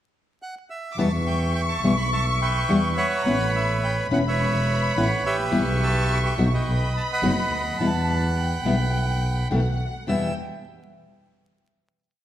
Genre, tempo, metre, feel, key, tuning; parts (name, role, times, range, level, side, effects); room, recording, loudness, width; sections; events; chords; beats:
tango; 106 BPM; 4/4; rubato; E dorian; A4 = 444 Hz
bandoneon; melody; 0.4-10.3 s; G4 to E6; -26 LUFS; right 2 dB
clear symphonic violin section; second line; 0.9-10.3 s; F#5 to D6; -30 LUFS; left 2 dB
nylon-string guitar; accompaniment; 1.0-10.3 s; E2 to F#4; -25 LUFS; left 2 dB
warm double bass; bass; 1.0-10.3 s; E1 to E2; -24 LUFS; equal
moderate scoring stage reverb, RT60 1.7 s; vinyl crackle; -20 LUFS; side -12 dB against mid
0.0-1.0 pickup bar; 1.0-10.1 A section; 10.1-12.2 final chord
0.0 N.C.; 1.0 Em; 3.3 Aadd9; 5.5 Em/B; 6.7 B; 7.8 Em; 9.5 B7; 10.1 E5
0.41 | 0.98 1.55 2.12 2.69 | 3.26 3.83 4.39 4.96 | 5.53 6.09 6.66 7.23 | 7.79 8.36 8.93 9.50 | 10.07